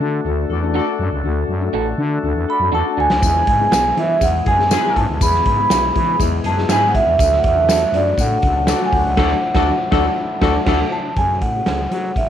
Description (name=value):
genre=uptempo 1960s-style soul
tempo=121 BPM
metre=4/4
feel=straight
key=unclear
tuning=A4 = 440 Hz
part: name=dark concert grand piano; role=accompaniment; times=0.0-12.2 s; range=G#3 to A4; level=-25 LUFS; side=left 12 dB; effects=none
part: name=tonewheel organ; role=sustained chords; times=0.0-11.1 s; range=F#3 to A4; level=-28 LUFS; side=equal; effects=overdrive, slow rotary speaker
part: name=growling FM bass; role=bass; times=0.0-12.3 s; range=A1 to F#3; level=-21 LUFS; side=equal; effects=none
part: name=warm horn section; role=second line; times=0.5-10.8 s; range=D4 to D5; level=-26 LUFS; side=left 11 dB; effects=none
part: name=electric guitar through a small old amp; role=stabs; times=0.7-11.8 s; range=A3 to A4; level=-25 LUFS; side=right 9 dB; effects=none
part: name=vibraphone with soft mallets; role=melody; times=2.5-12.3 s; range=D5 to B5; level=-17 LUFS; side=right 2 dB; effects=none
part: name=raw garage drum kit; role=drums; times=3.1-12.3 s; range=crash cymbal, hi-hat, kick drum, snare drum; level=-20 LUFS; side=equal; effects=none
part: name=tambourine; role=percussion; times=3.2-8.8 s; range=none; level=-30 LUFS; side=left 14 dB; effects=none
room=light reverb, small room ambience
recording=1960s-style stereo with parts hard left and right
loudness=-14 LUFS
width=side -10 dB against mid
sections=0.0-11.2 A section; 11.2-12.3 B section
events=drum fill 2.2-3.2; band accent 9.2-11.2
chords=0.0 D; 3.2 E; 7.2 D; 11.2 F#madd9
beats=0.25 0.74 | 1.24 1.74 2.23 2.73 | 3.22 3.72 4.22 4.71 | 5.21 5.71 6.20 6.70 | 7.19 7.69 8.19 8.68 | 9.18 9.67 10.17 10.67 | 11.17 11.66 12.16